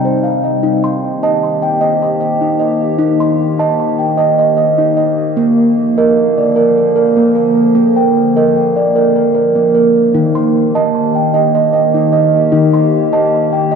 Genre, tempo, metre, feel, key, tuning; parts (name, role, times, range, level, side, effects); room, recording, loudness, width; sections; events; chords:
world meditative, meditative tuned percussion; 76 BPM; 3/4; swing 53% on 16ths; A4 = 440 Hz
warbly tape-like pad; sustained chords; 0.0-13.8 s; C3 to G4; -17 LUFS; left 1 dB; chorus, built-in reverb
steel tongue drum; arpeggios; 0.0-13.8 s; Eb3 to C6; -11 LUFS; right 1 dB; tape echo
wet lush hall reverb, RT60 2.5 s; dark, warm production; -10 LUFS; side -6 dB against mid
0.6-13.8 A section
0.0 Cm; 0.6 Eb; 5.4 Bb; 10.1 Eb